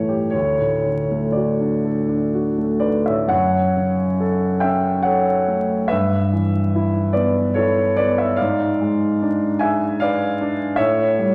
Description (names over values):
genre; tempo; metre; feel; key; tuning
classical, romantic nocturne for solo piano; 57-78 BPM; 3/4; rubato; unclear; A4 = 442 Hz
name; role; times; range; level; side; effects
warm concert grand piano; solo; 0.0-11.3 s; D2 to G#5; -19 LUFS; equal; none
room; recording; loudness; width
wet recital hall reverb, RT60 1.6 s; vinyl crackle; -19 LUFS; mono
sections
0.0-3.3 A section; 3.3-11.3 B section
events
none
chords
0.3 D; 3.3 F#m; 5.9 Em/G; 8.4 G#dim7; 10.8 A7